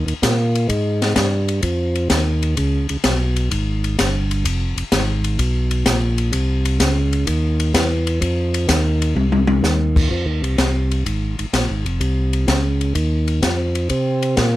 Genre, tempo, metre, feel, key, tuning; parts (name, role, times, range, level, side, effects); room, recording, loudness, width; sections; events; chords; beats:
soul jazz organ trio; 127 BPM; 4/4; swing 69% on 8ths; F minor; A4 = 440 Hz
tonewheel organ; bass; 0.0-14.6 s; F1 to C3; -18 LUFS; equal; overdrive, slow rotary speaker
open jazz drum kit; drums; 0.1-14.5 s; crash cymbal, hi-hat, kick drum, ride cymbal, snare drum, toms; -21 LUFS; left 1 dB
light reverb; -16 LUFS; side -15 dB against mid
0.0-10.1 A section; 10.1-14.6 B section
drum fill 9.2-9.6
0.21 | 0.69 1.16 1.63 2.10 | 2.57 3.04 3.51 3.98 | 4.45 4.92 5.39 5.86 | 6.33 6.81 7.28 7.75 | 8.22 8.69 9.16 9.64 | 10.11 10.58 11.06 11.53 | 12.00 12.48 12.95 13.43 | 13.90 14.38